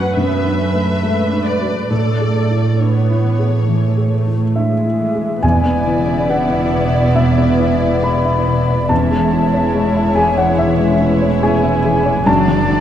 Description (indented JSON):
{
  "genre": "cinematic, emotional film score for orchestra",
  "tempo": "69 BPM",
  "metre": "4/4",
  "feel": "rubato",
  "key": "A major",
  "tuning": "A4 = 444 Hz",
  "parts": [
    { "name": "muted symphonic violin section", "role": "melody", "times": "0.0-12.8 s", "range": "C#5 to F#5", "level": "-26 LUFS", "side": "left 3 dB", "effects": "none" },
    { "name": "dark baby grand piano", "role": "accompaniment", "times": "0.0-12.8 s", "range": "E2 to B5", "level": "-18 LUFS", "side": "left 1 dB", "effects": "none" },
    { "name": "muted symphonic viola section", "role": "accompaniment", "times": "0.0-12.8 s", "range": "F#3 to B4", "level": "-24 LUFS", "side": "right 1 dB", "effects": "none" },
    { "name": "concert harp", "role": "arpeggios", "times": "0.0-12.8 s", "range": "E2 to D5", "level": "-23 LUFS", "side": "left 6 dB", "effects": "none" },
    { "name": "muted symphonic cello section", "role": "bass", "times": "0.0-12.8 s", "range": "E2 to A2", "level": "-20 LUFS", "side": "right 3 dB", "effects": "none" },
    { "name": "silver concert flute", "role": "second line", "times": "4.6-12.8 s", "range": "E5 to B5", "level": "-22 LUFS", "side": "equal", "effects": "none" },
    { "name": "muted symphonic violin section", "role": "second line", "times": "5.4-12.8 s", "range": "D4 to E4", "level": "-25 LUFS", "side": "left 1 dB", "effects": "none" },
    { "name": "dark French horn section", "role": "sustained chords", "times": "5.4-12.8 s", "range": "E3 to D5", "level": "-22 LUFS", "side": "left 2 dB", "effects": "none" },
    { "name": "muted symphonic double bass section", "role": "bass", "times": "5.4-12.8 s", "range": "E1 to F#1", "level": "-22 LUFS", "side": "right 4 dB", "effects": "none" },
    { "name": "timpani", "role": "percussion", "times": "5.4-10.1 s", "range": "E2", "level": "-23 LUFS", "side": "right 2 dB", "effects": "none" }
  ],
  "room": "wet scoring stage reverb, RT60 1.8 s",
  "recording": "dark, warm production",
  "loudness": "-13 LUFS",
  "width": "side -10 dB against mid",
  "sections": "0.0-5.4 A section; 5.4-12.8 A section",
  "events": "none",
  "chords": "0.0 D/F#; 1.9 Amaj7; 5.4 E7; 8.9 Amaj7/E; 12.3 D/F#"
}